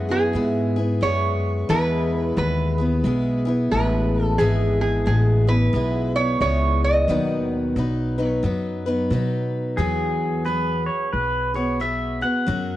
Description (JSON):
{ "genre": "honky-tonk and classic country", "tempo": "89 BPM", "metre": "4/4", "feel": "swing 63% on 8ths", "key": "E major", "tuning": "A4 = 440 Hz", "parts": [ { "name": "lap resonator guitar", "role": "second line", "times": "0.0-9.1 s", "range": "G#4 to D#5", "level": "-24 LUFS", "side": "right 2 dB", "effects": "none" }, { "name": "picked steel-string acoustic guitar", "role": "accompaniment", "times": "0.0-12.8 s", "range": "B2 to B4", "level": "-24 LUFS", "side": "left 1 dB", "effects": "none" }, { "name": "upright bass", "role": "bass", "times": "0.0-12.8 s", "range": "G#1 to B2", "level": "-23 LUFS", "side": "equal", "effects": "none" }, { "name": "pedal steel guitar", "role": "melody", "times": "9.8-12.8 s", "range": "G#4 to F#5", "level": "-24 LUFS", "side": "equal", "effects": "none" } ], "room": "light reverb", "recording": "worn, warbling old tape, cassette tape, warbly pitch drift", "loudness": "-19 LUFS", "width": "side -14 dB against mid", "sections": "0.0-9.8 A section; 9.8-12.8 B section", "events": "resonator guitar played with a steel bar solo 0.0-9.8", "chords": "0.0 E; 7.1 B; 9.8 Eadd9" }